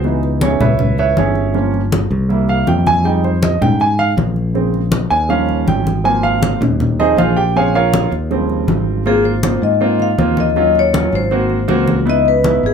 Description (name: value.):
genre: Afro-Cuban jazz.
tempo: 160 BPM.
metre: 4/4.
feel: straight.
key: Ab major.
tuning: A4 = 440 Hz.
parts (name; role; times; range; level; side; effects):
warm concert grand piano; accompaniment; 0.0-12.7 s; Db3 to Ab5; -16 LUFS; right 3 dB; none.
fingered electric bass; bass; 0.0-12.7 s; G1 to Ab2; -18 LUFS; left 1 dB; none.
congas; percussion; 0.0-12.6 s; none; -20 LUFS; left 1 dB; none.
vibraphone with medium mallets; melody; 9.1-12.7 s; Ab4 to F5; -16 LUFS; left 5 dB; none.
room: wet club reverb, RT60 0.6 s.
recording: heard from further back in the room.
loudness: -12 LUFS.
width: side -6 dB against mid.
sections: 0.0-9.1 A section; 9.1-12.7 B section.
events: grand piano solo 0.0-9.1.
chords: 0.0 Dbm9; 1.6 Gm7b5; 2.3 C7; 3.1 Fm9; 4.6 Bbm7; 5.3 Eb7; 6.1 Ab6; 7.6 Bbm7; 8.3 Eb13; 9.1 Ab6; 10.6 Ebm9; 11.3 Ab7; 12.1 Dbm9.